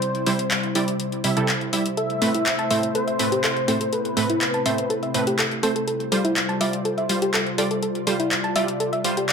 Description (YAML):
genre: progressive house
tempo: 123 BPM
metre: 4/4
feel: straight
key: A minor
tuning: A4 = 440 Hz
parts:
  - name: wide unison lead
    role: melody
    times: 0.0-5.6 s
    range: B4 to E5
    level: -27 LUFS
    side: left 1 dB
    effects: ping-pong delay
  - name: airy breathy pad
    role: sustained chords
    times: 0.0-9.3 s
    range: C3 to D5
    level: -28 LUFS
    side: left 2 dB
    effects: chorus
  - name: house drum kit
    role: drums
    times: 0.0-9.3 s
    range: handclaps, hi-hat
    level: -25 LUFS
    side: left 2 dB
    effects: none
  - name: supersaw stab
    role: stabs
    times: 0.3-9.2 s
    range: A2 to E5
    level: -25 LUFS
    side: right 3 dB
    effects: low-pass filter, tape echo
  - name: soft round pluck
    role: arpeggios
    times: 2.0-9.3 s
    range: E4 to A5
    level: -26 LUFS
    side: equal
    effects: chorus, cassette tape, tape echo
room: moderate digital room reverb, RT60 1.2 s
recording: none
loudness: -20 LUFS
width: side -6 dB against mid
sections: 0.0-9.3 A section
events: none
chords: 0.0 C; 2.0 Amadd9; 5.9 Fsus2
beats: | 0.02 0.51 1.00 1.49 | 1.97 2.46 2.95 3.44 | 3.92 4.41 4.90 5.39 | 5.88 6.36 6.85 7.34 | 7.83 8.31 8.80 9.29